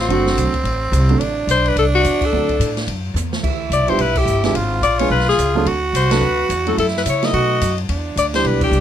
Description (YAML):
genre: jazz, small-group swing and bop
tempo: 215 BPM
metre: 4/4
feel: swing 60% on 8ths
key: D mixolydian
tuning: A4 = 440 Hz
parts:
  - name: clear alto saxophone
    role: melody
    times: 0.0-8.8 s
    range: F#4 to Eb5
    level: -19 LUFS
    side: left 6 dB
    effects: none
  - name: growling tenor saxophone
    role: second line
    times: 0.0-8.8 s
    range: C4 to F#4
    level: -21 LUFS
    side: right 4 dB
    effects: none
  - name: upright bass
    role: bass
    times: 0.0-8.8 s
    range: F#1 to C#3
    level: -20 LUFS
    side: equal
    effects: none
  - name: warm grand piano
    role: accompaniment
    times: 0.1-8.7 s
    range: D3 to A4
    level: -22 LUFS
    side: right 6 dB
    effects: none
  - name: open jazz drum kit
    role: drums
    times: 0.1-8.8 s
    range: crash cymbal, hi-hat, kick drum, ride cymbal, snare drum, toms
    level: -26 LUFS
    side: equal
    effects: none
room: light reverb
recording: close, detailed microphones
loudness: -15 LUFS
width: side -10 dB against mid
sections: 0.0-8.8 A section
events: band accent 2.2, 4.1, 6.1, 8.6; drum fill 3.2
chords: 0.0 D7; 3.4 G7; 4.5 G#dim7; 5.7 D7; 6.8 F#m7; 7.3 B7; 7.9 Em7